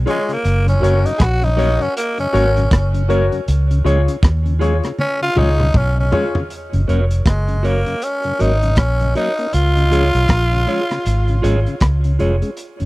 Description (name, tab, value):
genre	roots reggae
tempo	79 BPM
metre	4/4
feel	swing 60% on 16ths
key	F# major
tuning	A4 = 442 Hz
part	vintage muted fingered electric bass	bass	0.0-12.9 s	E#1 to D#2	-16 LUFS	equal	none
part	growling tenor saxophone	melody	0.1-11.8 s	G#3 to G#4	-20 LUFS	equal	tape echo
part	clean electric guitar	accompaniment	0.1-12.4 s	E#4 to C#5	-25 LUFS	right 3 dB	spring reverb, tape echo
part	mellow tonewheel organ	accompaniment	0.1-12.9 s	F#2 to C#4	-23 LUFS	left 3 dB	slow rotary speaker
part	warm grand piano	stabs	0.1-6.4 s	E#4 to C#5	-22 LUFS	left 6 dB	none
part	crunchy breakbeat drum kit	drums	0.1-12.9 s	hi-hat, kick drum, rim click, toms	-17 LUFS	equal	none
room	little or no reverb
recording	dry, close 1970s-style studio recording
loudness	-14 LUFS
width	side -19 dB against mid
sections	0.0-6.5 A section; 6.5-12.9 B section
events	tenor saxophone solo 0.0-6.5; drum fill 5.0-6.5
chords	0.4 F#; 3.5 C#; 6.5 F#; 9.5 C#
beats	| 0.45 1.20 1.96 2.72 | 3.48 4.23 4.99 5.75 | 6.50 7.26 8.02 8.78 | 9.54 10.29 11.05 11.81 | 12.57